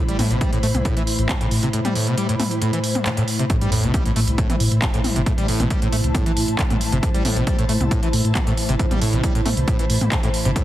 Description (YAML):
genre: driving peak-time techno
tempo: 136 BPM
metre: 4/4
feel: straight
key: A minor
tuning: A4 = 440 Hz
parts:
  - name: screaming distorted acid line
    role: riff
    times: 0.0-10.6 s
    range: A2 to A3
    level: -24 LUFS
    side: equal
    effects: distortion, wide subtle chorus, sidechain pumping, digital delay
  - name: metallic inharmonic drone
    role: drone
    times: 0.1-10.6 s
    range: A2 to E3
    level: -27 LUFS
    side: left 1 dB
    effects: chorus, built-in reverb, sidechain pumping
  - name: ethereal airy pad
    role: texture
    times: 0.0-10.6 s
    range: E4 to B5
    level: -29 LUFS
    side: right 1 dB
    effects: ensemble chorus, built-in reverb, phaser, sidechain pumping
  - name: dark detuned saw bass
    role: bass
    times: 0.1-10.5 s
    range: G1 to A2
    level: -21 LUFS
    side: equal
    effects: tube saturation, sidechain pumping
  - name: techno drum kit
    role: drums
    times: 0.1-10.6 s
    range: handclaps, hi-hat, toms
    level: -26 LUFS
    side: equal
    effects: sidechain pumping on hats, sidechain pumping on toms
  - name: electronic kick drum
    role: drums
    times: 0.4-10.6 s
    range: none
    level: -22 LUFS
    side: equal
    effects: none
  - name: sub drop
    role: sound effects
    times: 3.5-5.3 s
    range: none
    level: -29 LUFS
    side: equal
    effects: none
room: light reverb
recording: heavily compressed radio sound, multiband compression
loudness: -17 LUFS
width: side -14 dB against mid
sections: 0.0-3.5 A section; 3.5-10.6 B section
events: drop 3.5-10.6; impact 3.5-5.3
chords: 0.0 Am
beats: 0.41 0.85 1.29 | 1.73 2.17 2.62 3.06 | 3.50 3.94 4.38 4.82 | 5.26 5.71 6.15 6.59 | 7.03 7.47 7.91 8.35 | 8.79 9.23 9.68 10.12 | 10.56